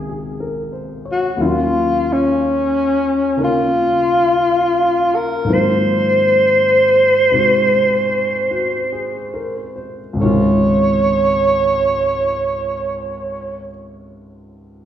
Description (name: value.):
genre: jazz ballad.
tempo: 45-61 BPM.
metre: 4/4.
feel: swing 66% on 8ths.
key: Db major.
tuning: A4 = 436 Hz.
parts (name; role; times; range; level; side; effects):
breathy alto saxophone; melody; 0.0-13.6 s; Db4 to Db5; -15 LUFS; equal; none.
warm grand piano; accompaniment; 0.0-14.9 s; Db2 to F5; -21 LUFS; left 1 dB; none.
room: wet recital hall reverb, RT60 1.8 s.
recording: recorded in a church or concert hall.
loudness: -14 LUFS.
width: side -10 dB against mid.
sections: 0.0-1.4 A section; 1.4-10.2 B section; 10.2-14.9 C section.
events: slowing down 1.4-10.2.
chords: 0.0 Db69; 1.4 Ebm9; 5.5 Ab13; 10.2 Dbmaj7.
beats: 0.39 | 1.38 2.37 3.38 4.40 | 5.46 6.55 7.70 8.90 | 10.18 11.50 12.81 14.13.